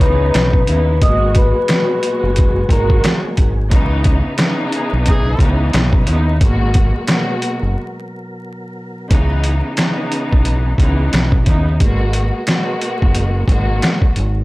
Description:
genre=hip hop, boom-bap hip-hop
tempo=89 BPM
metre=4/4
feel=swing 59% on 16ths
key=C# minor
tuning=A4 = 439 Hz
part: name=vibraphone with soft mallets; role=melody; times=0.0-3.0 s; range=A#4 to D#6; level=-19 LUFS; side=left 2 dB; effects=high-pass filter, low-pass filter, analog delay
part: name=warm studio string section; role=accompaniment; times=0.0-14.3 s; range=A#2 to F#4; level=-21 LUFS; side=equal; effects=cassette tape, high-pass filter, low-pass filter
part: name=tonewheel organ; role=sustained chords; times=0.0-9.1 s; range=B2 to D#5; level=-31 LUFS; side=equal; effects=none
part: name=deep dub fingered electric bass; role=bass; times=0.0-14.4 s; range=F#1 to D#2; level=-16 LUFS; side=equal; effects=transformer saturation
part: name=trip hop sampler-style drum kit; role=drums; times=0.0-14.3 s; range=hi-hat, kick drum, snare drum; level=-15 LUFS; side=equal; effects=none
part: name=warm horn section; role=stabs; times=4.8-5.5 s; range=E3 to G#4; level=-26 LUFS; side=left 1 dB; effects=high-pass filter, low-pass filter, analog delay
room=studio reverb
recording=dry, gritty hardware recording, vinyl crackle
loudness=-13 LUFS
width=side -20 dB against mid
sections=0.0-9.1 A section; 9.1-14.4 B section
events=break 7.8-9.1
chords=0.0 C#m9; 1.0 G#m9; 3.7 C#m9; 6.4 G#m9; 9.1 C#m9; 11.8 G#m9

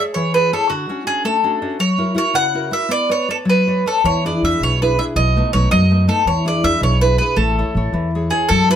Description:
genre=italian folk, Italian serenade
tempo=108 BPM (dotted quarters)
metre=6/8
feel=rubato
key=A major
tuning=A4 = 442 Hz
part: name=bowl-back mandolin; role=melody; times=0.0-8.8 s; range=F#4 to F#5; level=-17 LUFS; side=right 1 dB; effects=none
part: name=nylon-string guitar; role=accompaniment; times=0.0-8.8 s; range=B2 to D5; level=-20 LUFS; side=left 2 dB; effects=none
part: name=upright bass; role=bass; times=4.0-8.8 s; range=A1 to F#2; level=-18 LUFS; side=right 1 dB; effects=none
room=moderate studio reverb, RT60 0.5 s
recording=close, detailed microphones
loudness=-14 LUFS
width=side -9 dB against mid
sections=0.0-8.5 A section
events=none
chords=0.0 Amaj7; 0.7 Dmaj7; 1.8 F#7; 2.9 Bmadd9; 4.0 E7; 5.2 B7; 6.3 E7; 7.4 Amaj7

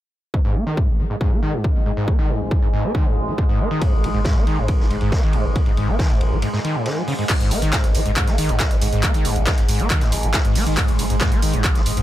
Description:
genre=driving peak-time techno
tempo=138 BPM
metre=4/4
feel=straight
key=G# minor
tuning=A4 = 440 Hz
part: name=screaming distorted acid line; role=riff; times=0.3-12.0 s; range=G#1 to B3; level=-23 LUFS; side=equal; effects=distortion, lush chorus, sidechain pumping, ping-pong delay
part: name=overtone-sweeping drone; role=drone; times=0.7-12.0 s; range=G#2 to G#3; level=-28 LUFS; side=right 1 dB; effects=chorus, built-in reverb, sidechain pumping
part: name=electronic kick drum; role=drums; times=0.3-11.7 s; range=none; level=-19 LUFS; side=equal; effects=none
part: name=street-band drum kit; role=drums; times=3.8-12.0 s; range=hi-hat, ride cymbal, snare drum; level=-33 LUFS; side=equal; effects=high-pass filter on cymbals, high-pass filter on hats, high-pass filter on snare, high-pass filter on room
part: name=warm sub bass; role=bass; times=3.9-12.0 s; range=G#1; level=-23 LUFS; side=equal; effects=overdrive, sidechain pumping, low-pass filter
part: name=punchy analog drum machine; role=drums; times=7.3-12.0 s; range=crash cymbal, handclaps, hi-hat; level=-24 LUFS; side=equal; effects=sidechain pumping on hats, sidechain pumping on cymbals
room=small room ambience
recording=none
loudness=-17 LUFS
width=side -14 dB against mid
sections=0.3-7.3 A section; 7.3-12.0 B section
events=filter sweep on acid bass 0.3-7.3; break 6.4-7.3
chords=0.3 G#5

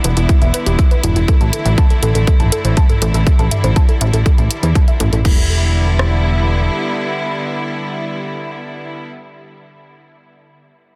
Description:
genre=melodic techno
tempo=121 BPM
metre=4/4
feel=straight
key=E minor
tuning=A4 = 440 Hz
part: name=clear studio string section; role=sustained chords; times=0.0-9.1 s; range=D3 to E4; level=-24 LUFS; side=equal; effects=sidechain pumping
part: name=woody wave-folded pluck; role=arpeggios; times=0.0-5.5 s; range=E4 to A5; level=-27 LUFS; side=equal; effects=chorus, sidechain pumping, tape echo
part: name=plucky analog bass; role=bass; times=0.0-6.7 s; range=E1 to E2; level=-17 LUFS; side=equal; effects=sidechain pumping
part: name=house drum kit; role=drums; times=0.0-5.3 s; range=crash cymbal, hi-hat, toms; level=-24 LUFS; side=equal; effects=overdrive, sidechain pumping on hats, sidechain pumping on cymbals, sidechain pumping on toms
part: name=downlifter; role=sound effects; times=0.0-1.3 s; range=none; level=barely audible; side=none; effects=none
part: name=house drum kit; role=drums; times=0.3-6.1 s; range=kick drum, rim click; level=-15 LUFS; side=equal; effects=overdrive
room=little or no reverb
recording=dense, heavily limited modern master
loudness=-15 LUFS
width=mono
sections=0.0-5.2 A section; 5.2-9.2 B section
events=filter sweep on synth pluck 0.0-5.2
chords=0.0 Em7; 1.3 Asus4; 5.2 Em7

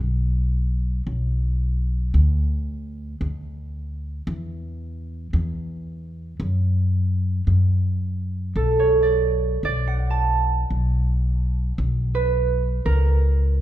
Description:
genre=acoustic folk-pop ballad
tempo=56 BPM (dotted quarters)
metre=6/8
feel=straight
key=B minor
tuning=A4 = 441 Hz
part: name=upright bass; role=bass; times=0.0-13.6 s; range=B1 to F#2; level=-21 LUFS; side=equal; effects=none
part: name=concert harp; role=arpeggios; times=8.6-13.6 s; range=A4 to A5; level=-22 LUFS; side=right 5 dB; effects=none
room=wet recital hall reverb, RT60 1.6 s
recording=recorded in a church or concert hall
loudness=-20 LUFS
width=side -12 dB against mid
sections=0.0-13.6 A section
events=none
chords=0.0 N.C.; 8.6 Bm; 10.7 N.C.; 12.9 A#m/C#

